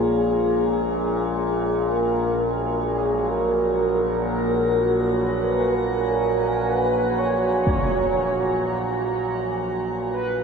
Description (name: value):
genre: dark ambient drone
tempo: free time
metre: none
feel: none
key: unclear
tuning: A4 = 440 Hz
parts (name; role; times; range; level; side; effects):
- deep dark ambient pad; sustained chords; 0.0-10.4 s; Bb3 to Bb5; -24 LUFS; right 1 dB; chorus, built-in reverb, shimmer reverb
- overtone-sweeping drone; drone; 0.0-10.4 s; Bb1 to Bb2; -26 LUFS; left 1 dB; chorus, built-in reverb
- bronze singing bowl; texture; 0.0-10.4 s; Bb5; -44 LUFS; equal; none
- mellow horn-like synth lead; melody; 1.8-10.4 s; Ab4 to Db5; -24 LUFS; right 1 dB; wide subtle chorus, shimmer reverb, ping-pong delay
- impact; percussion; 7.7-7.9 s; none; -27 LUFS; equal; low-pass filter on sfx
room: wet huge ambient reverb, RT60 8.5 s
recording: none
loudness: -20 LUFS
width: side -5 dB against mid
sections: 0.0-10.4 A section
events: fade-out 7.0-10.4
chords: 0.0 Bbm; 1.9 Gb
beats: free time